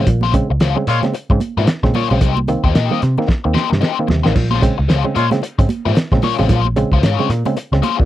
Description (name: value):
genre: funk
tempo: 112 BPM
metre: 4/4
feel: swing 60% on 16ths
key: Bb dorian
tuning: A4 = 440 Hz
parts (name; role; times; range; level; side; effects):
- crunchy overdriven guitar; accompaniment; 0.0-8.0 s; Ab3 to Eb5; -20 LUFS; left 11 dB; wah
- muted clav; stabs; 0.0-8.1 s; Bb2 to C4; -19 LUFS; right 2 dB; none
- vintage muted picked electric bass; bass; 0.0-8.1 s; A1 to C3; -17 LUFS; equal; none
- cloth-damped thuddy drum kit; drums; 0.1-8.1 s; crash cymbal, hi-hat, kick drum, snare drum; -17 LUFS; equal; none
- congas; percussion; 0.1-8.0 s; none; -25 LUFS; right 6 dB; none
- warm horn section; second line; 0.9-1.0, 5.2-5.3 s; Ab3 to Db5; -19 LUFS; left 1 dB; none
room: little or no reverb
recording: dry, close 1970s-style studio recording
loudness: -13 LUFS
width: side -13 dB against mid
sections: 0.0-4.4 A section; 4.4-8.1 B section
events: drum fill 3.3-4.4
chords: 0.0 Bbm9; 2.2 Cm7; 4.4 Bbm9